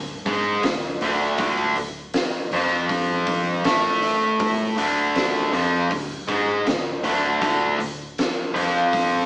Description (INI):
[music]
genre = blues rock power trio and southern rock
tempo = 80 BPM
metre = 4/4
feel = straight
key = D minor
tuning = A4 = 439 Hz
[part]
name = overdriven electric guitar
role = riff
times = 0.0-9.3 s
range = D2 to A3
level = -20 LUFS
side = equal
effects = none
[part]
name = vintage muted fingered electric bass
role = bass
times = 0.0-9.3 s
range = D1 to A1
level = -43 LUFS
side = equal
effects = none
[part]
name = oversized low-tuned drum kit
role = drums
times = 0.3-9.1 s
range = hi-hat, kick drum, snare drum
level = -26 LUFS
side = equal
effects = none
[sound]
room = wet stone room reverb, RT60 1.0 s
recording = band playing live in one room, small speaker sound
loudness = -19 LUFS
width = side -22 dB against mid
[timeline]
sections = 0.0-9.3 A section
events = none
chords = 0.0 Dm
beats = 0.64 | 1.39 2.14 2.89 3.65 | 4.40 5.16 5.91 6.67 | 7.42 8.18 8.93